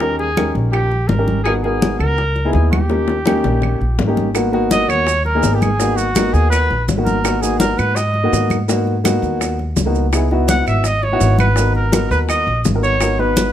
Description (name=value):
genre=Afro-Cuban jazz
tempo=166 BPM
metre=4/4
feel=straight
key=G# minor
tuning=A4 = 438 Hz
part: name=mellow trumpet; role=melody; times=0.0-13.5 s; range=F#4 to F#5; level=-20 LUFS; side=right 1 dB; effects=none
part: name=warm baby grand piano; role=accompaniment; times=0.0-13.5 s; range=A#3 to B4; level=-19 LUFS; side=left 1 dB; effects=none
part: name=upright bass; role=bass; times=0.0-13.5 s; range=G#1 to G#2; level=-18 LUFS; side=equal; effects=none
part: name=bongos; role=percussion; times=0.0-13.5 s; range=none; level=-25 LUFS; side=left 6 dB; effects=none
part: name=congas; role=percussion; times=0.0-13.5 s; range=none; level=-23 LUFS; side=left 1 dB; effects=none
part: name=claves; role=percussion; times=0.4-13.2 s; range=none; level=-29 LUFS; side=right 8 dB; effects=none
part: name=maracas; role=percussion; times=4.4-13.5 s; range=none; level=-29 LUFS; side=right 10 dB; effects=none
room=light reverb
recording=close, detailed microphones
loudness=-14 LUFS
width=side -10 dB against mid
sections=0.0-4.4 A section; 4.4-13.5 A section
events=drum fill 2.9-4.4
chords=0.0 D#7; 1.5 G#m7; 2.2 C#m7; 2.9 D#7; 4.4 G#m7; 10.1 C#m7; 11.6 G#m7